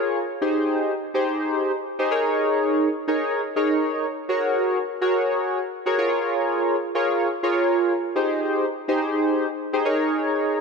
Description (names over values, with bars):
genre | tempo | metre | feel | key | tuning
pop | 124 BPM | 4/4 | straight | Ab major | A4 = 439 Hz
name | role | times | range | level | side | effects
chorused polysynth | solo | 0.0-10.6 s | Eb4 to Db5 | -20 LUFS | equal | none
room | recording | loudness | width
wet lush hall reverb, RT60 2.5 s | dark, warm production | -20 LUFS | side -4 dB against mid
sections
0.0-10.6 A section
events
none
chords
0.4 Abmaj7; 2.1 Eb7sus4; 4.3 Gbadd9; 6.0 Db6; 8.2 Abmaj7; 9.9 Eb7sus4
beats
| 0.42 0.90 1.39 1.87 | 2.35 2.84 3.32 3.81 | 4.29 4.77 5.26 5.74 | 6.22 6.71 7.19 7.68 | 8.16 8.64 9.13 9.61 | 10.10 10.58